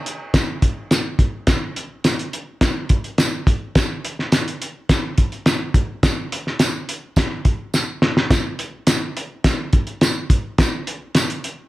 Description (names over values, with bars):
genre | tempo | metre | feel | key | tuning
soul | 105 BPM | 4/4 | straight | none | none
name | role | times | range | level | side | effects
cloth-damped thuddy drum kit | drums | 0.1-11.6 s | hi-hat, kick drum, snare drum | -17 LUFS | equal | none
tambourine | percussion | 0.3-11.3 s | none | -29 LUFS | right 2 dB | none
room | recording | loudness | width
light reverb | none | -18 LUFS | side -17 dB against mid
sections
0.0-11.7 A section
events
drum fill 7.7-8.3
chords
none